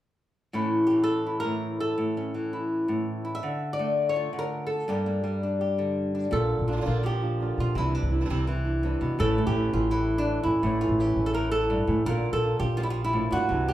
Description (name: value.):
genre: flamenco.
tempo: 167 BPM.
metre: 4/4.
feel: straight.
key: A phrygian dominant.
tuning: A4 = 440 Hz.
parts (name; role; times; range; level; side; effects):
flamenco guitar; melody; 0.5-13.7 s; G2 to E5; -26 LUFS; equal; none.
flamenco guitar; stabs; 6.3-13.7 s; C3 to F4; -31 LUFS; right 3 dB; none.
upright bass; bass; 6.3-13.7 s; A1 to C3; -28 LUFS; equal; none.
room: wet large studio reverb, RT60 0.9 s.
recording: band playing live in one room.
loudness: -24 LUFS.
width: side -13 dB against mid.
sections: 0.5-6.3 A section; 6.3-13.7 B section.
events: none.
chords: 0.5 A; 3.4 Dm; 4.9 Gm; 6.3 Bb; 7.8 Cadd9; 9.2 A; 12.1 Bb.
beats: | 0.54 0.90 1.26 1.62 | 1.98 2.34 2.71 3.07 | 3.43 3.79 4.15 4.51 | 4.88 5.24 5.60 5.96 | 6.32 6.68 7.04 7.40 | 7.76 8.12 8.48 8.84 | 9.20 9.55 9.91 10.27 | 10.63 10.99 11.35 11.71 | 12.07 12.43 12.79 13.14 | 13.50.